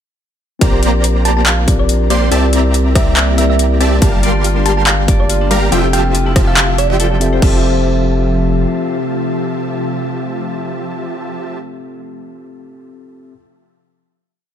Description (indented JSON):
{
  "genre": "future bass",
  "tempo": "141 BPM",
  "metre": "4/4",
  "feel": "swing 54% on 16ths, half-time",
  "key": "F major",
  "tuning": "A4 = 440 Hz",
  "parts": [
    { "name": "mellow tine electric piano", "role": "accompaniment", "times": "0.6-13.3 s", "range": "F3 to E6", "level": "-21 LUFS", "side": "left 2 dB", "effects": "slow stereo tremolo, vintage 12-bit sampler grit, sidechain pumping, dub echo" },
    { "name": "ethereal airy pad", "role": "sustained chords", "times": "1.5-11.6 s", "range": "C3 to E5", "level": "-25 LUFS", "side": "left 1 dB", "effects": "ensemble chorus, built-in reverb, phaser, sidechain pumping" },
    { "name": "supersaw stab", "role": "riff", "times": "0.6-11.6 s", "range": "F3 to C6", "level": "-19 LUFS", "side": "right 1 dB", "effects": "sidechain pumping" },
    { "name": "saturated sub bass", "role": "bass", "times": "0.6-8.7 s", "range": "F1 to C2", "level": "-15 LUFS", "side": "equal", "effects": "sidechain pumping" },
    { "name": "dubstep drum kit", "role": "drums", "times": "0.6-7.5 s", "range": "crash cymbal, handclaps, hi-hat, rim click", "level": "-17 LUFS", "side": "left 1 dB", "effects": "small room ambience" },
    { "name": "electronic kick drum", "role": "drums", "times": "0.6-7.5 s", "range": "none", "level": "-13 LUFS", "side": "equal", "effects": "small room ambience" },
    { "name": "thumb-piano-like synth pluck", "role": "melody", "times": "1.3-7.1 s", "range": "D5 to A5", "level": "-21 LUFS", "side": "right 2 dB", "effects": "chorus, sidechain pumping, ping-pong delay" },
    { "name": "Celtic harp", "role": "arpeggios", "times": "4.0-10.0 s", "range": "D4 to F5", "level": "-25 LUFS", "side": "left 6 dB", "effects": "vintage 12-bit sampler grit, sidechain pumping, dub echo" }
  ],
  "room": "light reverb",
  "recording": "none",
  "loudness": "-11 LUFS",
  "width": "side -9 dB against mid",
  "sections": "0.6-7.4 drop; 7.4-10.8 final chord",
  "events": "drop 0.6-7.4",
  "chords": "0.6 Bb6; 2.3 C7; 4.0 Gm9; 5.7 Fmaj7",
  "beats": "| 0.61 1.04 1.47 1.89 | 2.32 2.74 3.17 3.59 | 4.02 4.44 4.87 5.29 | 5.72 6.15 6.57 7.00 | 7.42 7.85 8.27 8.70 | 9.12 9.55 9.98 10.40"
}